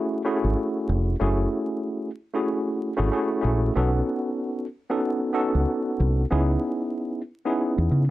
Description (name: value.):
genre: hip hop, boom-bap hip-hop.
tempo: 94 BPM.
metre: 4/4.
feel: swing 58% on 16ths.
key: unclear.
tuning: A4 = 440 Hz.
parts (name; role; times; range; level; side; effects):
tine electric piano; accompaniment; 0.0-8.0 s; A3 to A4; -24 LUFS; equal; overdrive, medium stereo tremolo, cassette tape, high-pass filter, low-pass filter.
deep dub fingered electric bass; bass; 0.4-8.1 s; E#1 to C#3; -22 LUFS; equal; none.
room: light reverb.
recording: dry, gritty hardware recording, vinyl crackle.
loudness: -22 LUFS.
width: side -16 dB against mid.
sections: 0.0-8.1 A section.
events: none.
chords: 0.0 F#m9; 3.8 B9; 6.3 C#m9.